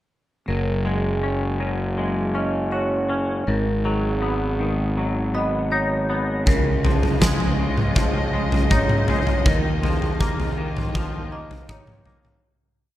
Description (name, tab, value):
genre	post-rock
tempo	80 BPM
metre	4/4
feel	straight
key	F# major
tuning	A4 = 440 Hz
part	twangy electric guitar	arpeggios	0.5-12.4 s	G#2 to F#4	-26 LUFS	left 2 dB	analog chorus, digital delay
part	vibraphone with medium hard mallets	arpeggios	0.5-12.4 s	G#4 to D#5	-29 LUFS	right 3 dB	digital delay
part	fuzz fingered electric bass	bass	0.5-12.4 s	F#1 to D#2	-24 LUFS	equal	overdrive
part	rich studio string section	sustained chords	6.5-12.4 s	C#3 to D#5	-30 LUFS	left 1 dB	none
part	huge arena drum kit	drums	6.5-12.4 s	kick drum, snare drum, toms	-20 LUFS	equal	none
room	light reverb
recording	none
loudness	-19 LUFS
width	side -14 dB against mid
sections	0.5-12.4 A section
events	fade-out 9.5-12.4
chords	0.5 F#sus2; 3.5 G#m7; 6.5 C#add9; 9.5 D#sus2